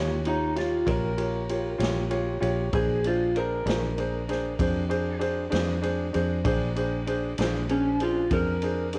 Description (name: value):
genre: slow blues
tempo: 64 BPM (dotted quarters)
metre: 12/8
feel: straight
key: Bb mixolydian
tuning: A4 = 440 Hz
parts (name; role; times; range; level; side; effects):
- clear upright piano; accompaniment; 0.0-9.0 s; D4 to Db5; -31 LUFS; equal; cassette tape
- fingered electric bass; bass; 0.0-9.0 s; Bb1 to F2; -32 LUFS; equal; none
- electric slide guitar; melody; 0.3-9.0 s; Db4 to Bb4; -31 LUFS; equal; cassette tape
- swinging big-band drum kit; drums; 0.3-9.0 s; kick drum, ride cymbal, snare drum; -36 LUFS; equal; cassette tape
room: light reverb, small room ambience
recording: home recording on cassette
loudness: -27 LUFS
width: mono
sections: 0.0-9.0 A section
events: electric slide guitar solo 0.0-9.0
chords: 0.0 Eb7; 2.7 Bb7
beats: 0.87 1.80 | 2.73 3.66 4.59 5.52 | 6.45 7.38 8.31